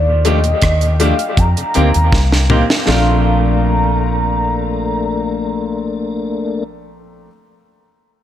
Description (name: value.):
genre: lovers rock reggae.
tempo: 80 BPM.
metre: 4/4.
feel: straight.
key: Bb major.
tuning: A4 = 440 Hz.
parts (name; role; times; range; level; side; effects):
warm velvety synth lead; melody; 0.0-6.6 s; D5 to Bb5; -22 LUFS; left 1 dB; chorus, tape echo.
deep dub fingered electric bass; bass; 0.0-7.3 s; Bb1 to F2; -16 LUFS; equal; none.
mellow tonewheel organ; accompaniment; 0.1-6.6 s; Eb2 to Eb4; -22 LUFS; left 5 dB; overdrive, chorus vibrato, slow rotary speaker.
bright concert grand piano; accompaniment; 0.2-7.3 s; A3 to G4; -22 LUFS; left 6 dB; dub echo.
semi-hollow electric guitar; stabs; 0.2-7.3 s; Eb3 to G4; -21 LUFS; right 5 dB; spring reverb, dub echo.
deep reggae drum kit; drums; 0.2-3.1 s; hi-hat, kick drum, rim click, snare drum, toms; -17 LUFS; equal; gated reverb.
room: light reverb.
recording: none.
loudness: -13 LUFS.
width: side -11 dB against mid.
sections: 0.0-2.9 A section; 2.9-5.9 B section.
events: drum fill 2.1-2.9.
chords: 0.0 Ebmaj9#11; 1.4 F7sus4; 2.9 Bbmaj7.